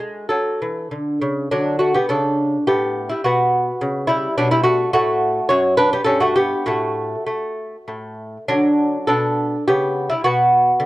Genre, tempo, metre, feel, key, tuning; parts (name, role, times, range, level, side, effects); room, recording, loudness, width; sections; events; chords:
classical, baroque-style dance for lute; 95-107 BPM; 3/4; rubato; D major; A4 = 440 Hz
lute; solo; 0.0-10.9 s; F#2 to C#5; -16 LUFS; equal
small room ambience; dry, close 1970s-style studio recording; -16 LUFS; side -17 dB against mid
0.0-1.5 A section; 1.5-10.9 A section
0.0 A; 1.5 D; 3.3 B5; 4.9 F#m/A; 6.1 G; 6.7 N.C.; 8.5 D; 10.2 B5